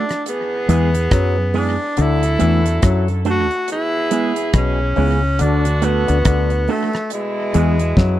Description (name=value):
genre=roots reggae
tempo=70 BPM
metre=4/4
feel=swing 60% on 16ths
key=unclear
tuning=A4 = 438 Hz
part: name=warm tenor saxophone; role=melody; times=0.0-8.2 s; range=G#3 to F#4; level=-21 LUFS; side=equal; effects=dub echo
part: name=electric guitar with an envelope filter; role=accompaniment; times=0.0-7.8 s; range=G#3 to A4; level=-23 LUFS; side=right 6 dB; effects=dub echo
part: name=damped 70s drum kit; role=drums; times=0.1-8.2 s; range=hi-hat, kick drum, rim click, snare drum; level=-19 LUFS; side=equal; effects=tape echo
part: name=clear horn section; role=second line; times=0.3-8.2 s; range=B2 to A4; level=-27 LUFS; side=right 3 dB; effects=dub echo
part: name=auto-wah clav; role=riff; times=0.7-8.2 s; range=B2 to F#3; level=-23 LUFS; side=left 7 dB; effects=overdrive
part: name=deep dub fingered electric bass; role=bass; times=0.7-8.2 s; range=B1 to F#2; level=-17 LUFS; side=equal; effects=none
room=small room ambience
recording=dry, close 1970s-style studio recording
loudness=-15 LUFS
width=side -13 dB against mid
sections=0.0-8.2 A section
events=drum fill 8.0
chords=0.3 E; 2.0 D; 3.7 E; 5.4 D; 7.1 E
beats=0.25 1.11 | 1.97 2.82 3.68 4.54 | 5.40 6.25 7.11 7.97